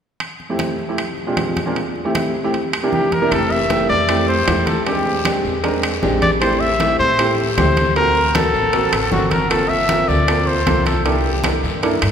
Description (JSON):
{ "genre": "Afro-Cuban jazz", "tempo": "155 BPM", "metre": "4/4", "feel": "straight", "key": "F major", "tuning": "A4 = 442 Hz", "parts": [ { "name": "claves", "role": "percussion", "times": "0.2-12.1 s", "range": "none", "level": "-34 LUFS", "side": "left 5 dB", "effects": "none" }, { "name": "congas", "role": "percussion", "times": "0.2-12.1 s", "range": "none", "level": "-26 LUFS", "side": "equal", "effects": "none" }, { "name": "timbales", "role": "percussion", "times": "0.2-12.1 s", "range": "none", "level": "-26 LUFS", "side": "right 3 dB", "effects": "none" }, { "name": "clear concert grand piano", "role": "accompaniment", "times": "0.5-12.1 s", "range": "F2 to Bb4", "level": "-20 LUFS", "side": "right 1 dB", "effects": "none" }, { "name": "breathy trumpet", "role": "melody", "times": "2.9-11.6 s", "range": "F#4 to E5", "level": "-18 LUFS", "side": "left 1 dB", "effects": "none" }, { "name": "upright bass", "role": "bass", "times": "3.3-12.1 s", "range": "F1 to A2", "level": "-23 LUFS", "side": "equal", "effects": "none" }, { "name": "bongos", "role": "percussion", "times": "3.3-12.1 s", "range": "none", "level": "-29 LUFS", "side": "left 5 dB", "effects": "none" }, { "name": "guiro", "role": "percussion", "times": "3.3-12.1 s", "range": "none", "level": "-32 LUFS", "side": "left 5 dB", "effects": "none" } ], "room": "wet church reverb, RT60 3.9 s", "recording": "recorded in a church or concert hall", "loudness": "-15 LUFS", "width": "side -8 dB against mid", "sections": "0.2-3.3 A section; 3.3-12.1 B section", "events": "none", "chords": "0.2 Fmaj9; 1.0 Bb13; 1.8 Am7; 2.5 C7; 3.3 Fmaj9; 4.9 E7alt; 6.4 Am7; 8.0 D7b13; 9.5 Gm11; 11.1 C13" }